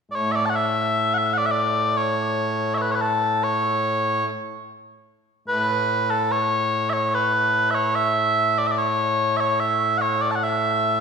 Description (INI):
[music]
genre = scottish traditional, Scottish pipe music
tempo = 73 BPM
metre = 3/4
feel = straight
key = A major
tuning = A4 = 439 Hz
[part]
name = mellow small bagpipes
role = solo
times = 0.1-11.0 s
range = A2 to A5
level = -19 LUFS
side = equal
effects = none
[sound]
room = wet recital hall reverb, RT60 1.6 s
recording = recorded in a church or concert hall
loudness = -19 LUFS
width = side -6 dB against mid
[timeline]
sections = 0.6-11.0 A section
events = none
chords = none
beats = | 0.56 1.38 2.20 | 3.02 3.84 4.67 | 5.49 6.31 7.13 | 7.95 8.77 9.60 | 10.42